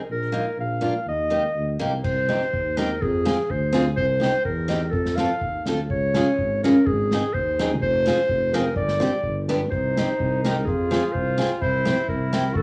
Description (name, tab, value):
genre	alpine folk, alpine dance band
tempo	125 BPM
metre	2/4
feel	rubato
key	C minor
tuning	A4 = 439 Hz
part	warm clarinet	melody	0.1-12.6 s	Ab4 to F5	-27 LUFS	equal	cassette tape
part	dark tuba	bass	0.1-12.6 s	F1 to F2	-29 LUFS	equal	none
part	picked steel-string acoustic guitar	accompaniment	0.3-12.4 s	Bb3 to A4	-26 LUFS	equal	cassette tape
part	unplugged drum kit	drums	2.0-12.6 s	crash cymbal, kick drum, snare drum	-33 LUFS	equal	cassette tape
part	mellow trumpet	second line	9.7-12.6 s	Eb4 to F#4	-34 LUFS	equal	cassette tape
room	light reverb, small room ambience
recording	home recording on cassette, studio ambience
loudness	-23 LUFS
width	mono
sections	0.0-2.0 A section; 2.0-12.6 B section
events	none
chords	0.1 Bbsus4; 0.6 Bb; 1.1 Eb; 2.0 Cm; 3.0 Fm; 4.0 Cm; 4.9 F; 5.9 Db; 6.9 Ab; 7.8 Fm; 8.8 Gsus4; 9.2 G; 9.7 Cm; 10.7 Fm; 11.6 C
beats	| 0.10 0.58 | 1.06 1.55 | 2.04 2.53 | 3.02 3.50 | 3.97 4.45 | 4.93 5.41 | 5.90 6.38 | 6.86 7.34 | 7.81 8.28 | 8.75 9.23 | 9.71 10.20 | 10.67 11.15 | 11.62 12.08 | 12.55